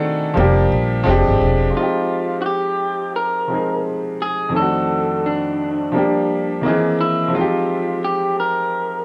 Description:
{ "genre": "hip hop", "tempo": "86 BPM", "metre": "4/4", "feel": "swing 63% on 16ths", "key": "F dorian", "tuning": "A4 = 443 Hz", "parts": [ { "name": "bright upright piano", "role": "accompaniment", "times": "0.0-9.0 s", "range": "F2 to D#5", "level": "-21 LUFS", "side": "equal", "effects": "cassette tape, low-pass filter" }, { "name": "upright bass", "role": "bass", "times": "0.4-1.7 s", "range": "E1 to Bb1", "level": "-20 LUFS", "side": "equal", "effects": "none" }, { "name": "electric guitar through a small old amp", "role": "melody", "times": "1.8-9.0 s", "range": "D4 to Bb4", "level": "-23 LUFS", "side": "equal", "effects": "low-pass filter" } ], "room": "moderate studio reverb, RT60 0.7 s", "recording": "none", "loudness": "-19 LUFS", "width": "mono", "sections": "0.0-1.8 A section; 1.8-9.0 B section", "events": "break 0.0-1.8", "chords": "0.4 Gm7/F; 1.1 Fm69; 1.8 Fm9; 4.6 D7b9/F; 5.9 Gm7/F; 6.6 C7alt; 7.3 Fm9", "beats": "0.37 1.06 | 1.76 2.46 3.16 3.85 | 4.55 5.25 5.95 6.64 | 7.34 8.04 8.74" }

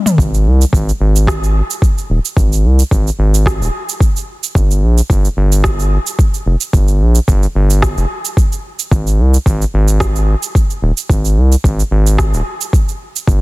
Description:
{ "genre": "organic downtempo", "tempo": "110 BPM", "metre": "4/4", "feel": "swing 53% on 16ths", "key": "unclear", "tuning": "A4 = 442 Hz", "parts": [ { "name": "deep house drum kit", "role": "drums", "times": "0.1-13.4 s", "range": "cabasa, rim click, toms", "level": "-20 LUFS", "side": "right 1 dB", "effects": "studio reverb, soft clipping on snare" }, { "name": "round analog bass", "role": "bass", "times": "0.2-13.4 s", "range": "Eb1 to C2", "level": "-11 LUFS", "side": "equal", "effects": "sidechain pumping" }, { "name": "electronic kick drum", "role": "drums", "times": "0.2-13.4 s", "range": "none", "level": "-13 LUFS", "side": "equal", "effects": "overdrive, studio reverb" } ], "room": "little or no reverb", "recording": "dense, heavily limited modern master", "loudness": "-11 LUFS", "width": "side -21 dB against mid", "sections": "0.2-13.4 A section", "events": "break 0.0; drum fill 0.0", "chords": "none", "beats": "| 0.19 0.73 1.28 1.82 | 2.37 2.92 3.46 4.01 | 4.55 5.10 5.64 6.19 | 6.73 7.28 7.82 8.37 | 8.91 9.46 10.01 10.55 | 11.10 11.64 12.19 12.73 | 13.28" }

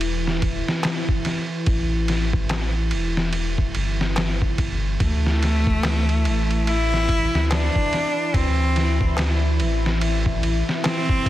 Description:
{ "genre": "trip hop", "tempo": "72 BPM", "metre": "4/4", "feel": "swing 60% on 16ths", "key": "unclear", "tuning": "A4 = 442 Hz", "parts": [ { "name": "deep dark ambient pad", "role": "sustained chords", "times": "0.0-11.3 s", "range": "E3 to E4", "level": "-28 LUFS", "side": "equal", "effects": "chorus, built-in reverb" }, { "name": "soft dub sub bass", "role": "bass", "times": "0.0-10.6 s", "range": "E1 to D2", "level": "-22 LUFS", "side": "equal", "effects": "tube saturation" }, { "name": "trip hop sampler-style drum kit", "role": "drums", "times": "0.0-11.3 s", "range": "hi-hat, kick drum, ride cymbal, snare drum", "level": "-24 LUFS", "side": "equal", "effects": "none" }, { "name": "darbuka", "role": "percussion", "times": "0.8-11.0 s", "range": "none", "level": "-32 LUFS", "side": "left 2 dB", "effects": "none" }, { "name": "clear cello", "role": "melody", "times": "5.0-11.3 s", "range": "A3 to E4", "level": "-24 LUFS", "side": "left 1 dB", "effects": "tape echo" } ], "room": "digital ambience", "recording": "dense, heavily limited modern master, vinyl crackle", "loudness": "-19 LUFS", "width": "side -14 dB against mid", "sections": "0.0-11.3 A section", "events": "none", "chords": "0.0 A5; 5.0 D5", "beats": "0.01 0.84 | 1.67 2.51 3.34 4.17 | 5.01 5.84 6.67 7.51 | 8.34 9.17 10.01 10.84" }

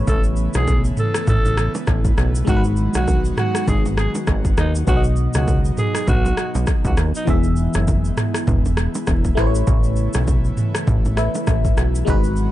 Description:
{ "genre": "afrobeats", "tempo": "100 BPM", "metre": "4/4", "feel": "swing 58% on 16ths", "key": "unclear", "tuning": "A4 = 439 Hz", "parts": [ { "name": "barking FM electric piano", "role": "accompaniment", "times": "0.0-12.5 s", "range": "B2 to E5", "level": "-26 LUFS", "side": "left 2 dB", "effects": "phaser" }, { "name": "airy breathy pad", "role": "sustained chords", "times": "0.0-12.5 s", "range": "C#3 to F#4", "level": "-28 LUFS", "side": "right 2 dB", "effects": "chorus" }, { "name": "plucky analog bass", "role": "bass", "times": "0.0-12.5 s", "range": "E1 to D#2", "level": "-19 LUFS", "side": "equal", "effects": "none" }, { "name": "growling alto saxophone", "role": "melody", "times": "0.1-7.3 s", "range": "D#4 to A4", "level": "-26 LUFS", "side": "right 1 dB", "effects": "tape echo" }, { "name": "afro-pop drum kit", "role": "drums", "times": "0.1-12.5 s", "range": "kick drum, rim click, shaker, toms", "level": "-20 LUFS", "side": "equal", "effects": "overdrive" }, { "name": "congas and bongos", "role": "percussion", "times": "0.1-12.2 s", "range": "none", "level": "-29 LUFS", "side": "right 2 dB", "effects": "none" } ], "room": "little or no reverb", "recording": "dark, warm production, nothing above 10.3 kHz", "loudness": "-16 LUFS", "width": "side -14 dB against mid", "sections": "0.0-12.5 A section", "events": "none", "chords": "0.0 Aadd9; 2.5 G#m7; 4.9 B; 7.3 E; 9.4 Aadd9", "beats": "| 0.07 0.67 1.27 1.87 | 2.47 3.07 3.67 4.27 | 4.87 5.47 6.07 6.67 | 7.27 7.87 8.47 9.07 | 9.67 10.27 10.87 11.47 | 12.07" }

